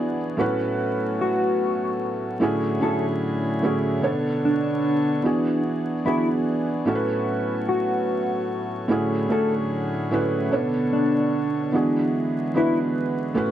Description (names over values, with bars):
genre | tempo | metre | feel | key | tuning
lo-fi hip hop | 74 BPM | 4/4 | swing 62% on 16ths | unclear | A4 = 441 Hz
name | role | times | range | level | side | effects
felt-muted upright piano | accompaniment | 0.0-13.5 s | A2 to C#5 | -23 LUFS | right 2 dB | low-pass filter
pedal harmonium | sustained chords | 0.0-13.5 s | A2 to C#5 | -29 LUFS | left 1 dB | low-pass filter
mellow electric guitar | melody | 1.2-12.8 s | D4 to A4 | -24 LUFS | left 1 dB | analog chorus, low-pass filter
room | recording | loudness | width
wet small room reverb, RT60 0.5 s | dark, warm production, vinyl crackle | -21 LUFS | side -11 dB against mid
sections
0.0-13.5 A section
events
none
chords
0.4 A69; 2.4 Dmaj9#11/A; 4.0 Bm9; 5.2 E7; 6.9 A69; 8.9 Dmaj9#11/A; 10.5 Bm9; 11.7 E7